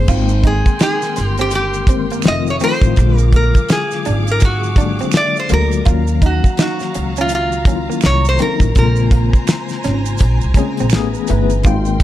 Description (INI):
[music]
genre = R&B, neo-soul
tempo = 83 BPM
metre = 4/4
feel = swing 62% on 16ths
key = Ab major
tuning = A4 = 439 Hz
[part]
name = metal-body resonator slide guitar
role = melody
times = 0.0-10.9 s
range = F4 to Eb5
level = -20 LUFS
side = equal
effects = slapback echo
[part]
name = tine electric piano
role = accompaniment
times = 0.0-12.0 s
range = C3 to G5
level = -21 LUFS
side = left 9 dB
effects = medium tremolo
[part]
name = upright bass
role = bass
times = 0.0-12.0 s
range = F1 to Eb2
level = -17 LUFS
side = equal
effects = none
[part]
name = electric guitar through a small old amp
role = second line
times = 0.1-11.8 s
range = A3 to F4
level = -25 LUFS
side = right 7 dB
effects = none
[part]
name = dark studio string section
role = sustained chords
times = 0.1-12.0 s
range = Gb3 to Eb6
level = -29 LUFS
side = equal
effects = none
[part]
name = damped 70s drum kit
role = drums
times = 0.1-12.0 s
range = crash cymbal, hi-hat, kick drum, snare drum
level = -14 LUFS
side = equal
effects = none
[part]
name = maracas and finger snaps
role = percussion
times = 0.1-12.0 s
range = none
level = -30 LUFS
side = right 18 dB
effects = none
[sound]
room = studio ambience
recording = none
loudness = -12 LUFS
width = side -13 dB against mid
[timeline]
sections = 0.1-12.0 A section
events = none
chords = 0.1 Abmaj9; 2.2 F7; 3.0 Bb7b13; 5.9 Ebm9; 8.8 Bbm9; 10.9 Amaj9